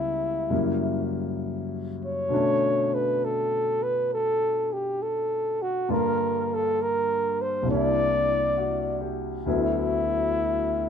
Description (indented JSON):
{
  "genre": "jazz ballad",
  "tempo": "67 BPM",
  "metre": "4/4",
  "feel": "swing 66% on 8ths",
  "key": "unclear",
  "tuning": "A4 = 440 Hz",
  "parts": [
    { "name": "breathy flugelhorn", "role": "melody", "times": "0.0-10.9 s", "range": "E4 to D5", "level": "-25 LUFS", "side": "equal", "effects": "none" },
    { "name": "warm concert grand piano", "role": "accompaniment", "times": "0.0-10.9 s", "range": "C2 to G4", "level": "-27 LUFS", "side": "left 2 dB", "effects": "none" }
  ],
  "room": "light reverb",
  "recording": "minimal, uncompressed stereo recording",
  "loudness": "-23 LUFS",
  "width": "side -7 dB against mid",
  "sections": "0.0-10.9 A section",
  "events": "none",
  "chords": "0.0 C#m7b5; 0.5 F#7b9; 2.3 Bm9; 5.9 Gm7; 7.7 C9; 9.5 D69"
}